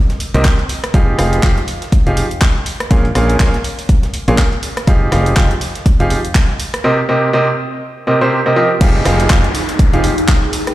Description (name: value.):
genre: piano house.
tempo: 122 BPM.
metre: 4/4.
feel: swing 58% on 16ths.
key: F minor.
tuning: A4 = 439 Hz.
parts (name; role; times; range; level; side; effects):
breakbeat sampler-style drum kit; drums; 0.1-10.7 s; hi-hat, snare drum; -32 LUFS; left 1 dB; none.
house drum kit; drums; 0.1-10.7 s; crash cymbal, handclaps, hi-hat, rim click; -22 LUFS; equal; none.
bright baby grand piano; riff; 0.3-10.1 s; Bb2 to F5; -16 LUFS; right 1 dB; sidechain pumping, dub echo.
modern bright fingered electric bass; bass; 0.3-10.1 s; F1 to C2; -16 LUFS; equal; sidechain pumping.
electronic kick drum; drums; 0.4-10.4 s; none; -12 LUFS; equal; none.
downlifter; sound effects; 8.8-10.7 s; none; -22 LUFS; equal; none.
granular cloud pad; texture; 9.5-10.7 s; Eb4 to Ab4; -21 LUFS; right 1 dB; built-in reverb, sidechain pumping.
room: light reverb.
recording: played on a big sound system in a bare room, large studio reverb.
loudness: -12 LUFS.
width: side -15 dB against mid.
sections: 0.0-8.8 A section; 8.8-10.7 B section.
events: drop 8.8-10.7.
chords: 0.0 Cm7; 0.9 Fm9; 2.7 Bbm7; 4.6 Fm9; 6.8 Cm7; 8.8 Fm9.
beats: 0.45 | 0.94 1.43 1.92 2.42 | 2.91 3.40 3.89 4.38 | 4.87 5.37 5.86 6.35 | 6.84 7.33 7.83 8.32 | 8.81 9.30 9.79 10.28.